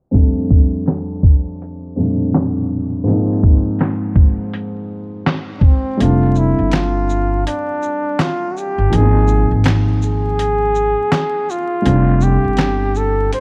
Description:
lo-fi hip hop; 82 BPM; 4/4; swing 58% on 16ths; F major; A4 = 441 Hz
felt-muted upright piano; accompaniment; 0.1-13.4 s; F2 to Eb4; -22 LUFS; equal; low-pass filter
dusty soul sampler-style drum kit; drums; 0.1-13.4 s; handclaps, hi-hat, kick drum, shaker, snare drum; -16 LUFS; equal
mellow flugelhorn; melody; 5.6-13.4 s; C4 to C5; -21 LUFS; equal; low-pass filter
upright bass; bass; 6.0-13.3 s; F1 to Ab1; -18 LUFS; equal
small room ambience; dark, warm production, vinyl crackle, low-pass filter; -16 LUFS; mono
0.1-6.0 A section; 6.0-13.4 B section
filter sweep 0.1-6.0; kick muted 6.0-13.4
0.1 F69; 3.1 Ab6; 6.0 F69; 8.9 Ab6; 11.8 F69

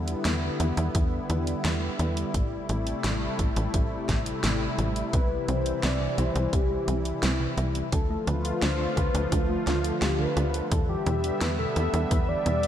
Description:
synthwave; 86 BPM; 4/4; straight; D dorian; A4 = 439 Hz
warm analog pad; sustained chords; 0.0-12.7 s; C3 to E5; -30 LUFS; left 1 dB; chorus, sidechain pumping
tight sequencer bass; bass; 0.0-12.7 s; A1 to E2; -28 LUFS; equal
pop drum kit; drums; 0.1-12.7 s; hi-hat, snare drum; -33 LUFS; equal
electronic kick drum; drums; 0.9-12.3 s; -28 LUFS; equal
soft octave-layered synth lead; melody; 5.1-12.7 s; F4 to D5; -30 LUFS; left 1 dB; chorus, cassette tape, tape echo
thumb-piano-like synth pluck; arpeggios; 5.1-12.6 s; B2 to F4; -35 LUFS; right 3 dB; chorus, ping-pong delay
moderate lush hall reverb, RT60 2.6 s; dreamy mix soaked in reverb; -24 LUFS; side -10 dB against mid
0.0-12.7 A section
0.0 Em7; 2.3 Am7; 5.1 C; 7.9 Dm; 10.7 Em7

